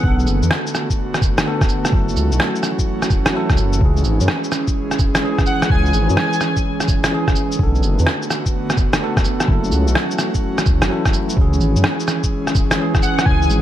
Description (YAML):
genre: future garage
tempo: 127 BPM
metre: 4/4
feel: swing 67% on 16ths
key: C# phrygian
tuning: A4 = 443 Hz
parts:
  - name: airy dreamy lead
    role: melody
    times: 0.0-0.1, 5.5-6.6, 13.0-13.5 s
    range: F#5 to G#5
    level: -24 LUFS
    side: left 1 dB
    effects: chorus, ping-pong delay
  - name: bell-like tine electric piano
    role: accompaniment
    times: 0.0-13.6 s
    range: D3 to A4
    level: -24 LUFS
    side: right 1 dB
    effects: medium stereo tremolo, vintage 12-bit sampler grit, sidechain pumping, ping-pong delay
  - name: airy breathy pad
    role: sustained chords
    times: 0.0-13.6 s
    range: D3 to G#4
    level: -23 LUFS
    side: right 1 dB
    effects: chorus, vintage 12-bit sampler grit, sidechain pumping
  - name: swelling detuned saw bass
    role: bass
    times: 0.0-13.6 s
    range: F#1 to F#2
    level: -17 LUFS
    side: equal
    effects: sidechain pumping
  - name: electronic kick drum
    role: drums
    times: 0.0-13.4 s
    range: none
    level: -18 LUFS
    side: equal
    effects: none
  - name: electronic shaker, cabasa and rim click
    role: drums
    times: 0.2-13.6 s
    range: none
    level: -21 LUFS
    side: equal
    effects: none
room: light reverb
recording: vinyl crackle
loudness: -15 LUFS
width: side -12 dB against mid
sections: 0.0-13.6 A section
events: none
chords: 0.0 Bm7; 1.9 F#m7; 3.8 C#m; 7.6 Bm7; 9.5 F#m7; 11.4 C#m